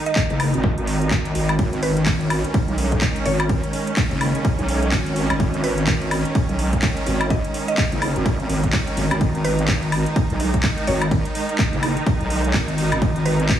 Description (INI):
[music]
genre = bass house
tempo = 126 BPM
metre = 4/4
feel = swing 59% on 16ths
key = G# minor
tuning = A4 = 439 Hz
[part]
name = rich symphonic string section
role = sustained chords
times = 0.0-13.6 s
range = D#3 to D#4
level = -26 LUFS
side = right 2 dB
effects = sidechain pumping, low-pass filter
[part]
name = mallet-like synth pluck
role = melody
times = 0.1-13.4 s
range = B4 to D#5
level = -28 LUFS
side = right 1 dB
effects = chorus, digital delay
[part]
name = house drum kit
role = drums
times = 0.1-13.6 s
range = handclaps, hi-hat, ride cymbal, woodblock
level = -26 LUFS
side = left 1 dB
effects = overdrive
[part]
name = electronic kick drum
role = drums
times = 0.2-13.6 s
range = none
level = -22 LUFS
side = equal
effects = overdrive
[part]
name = wobble bass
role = bass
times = 0.3-13.6 s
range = F#1 to B1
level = -21 LUFS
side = equal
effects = chorus, overdrive, sidechain pumping
[sound]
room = light reverb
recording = heavily compressed radio sound, studio ambience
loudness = -18 LUFS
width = side -10 dB against mid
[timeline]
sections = 0.0-13.6 A section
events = none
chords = 0.0 G#5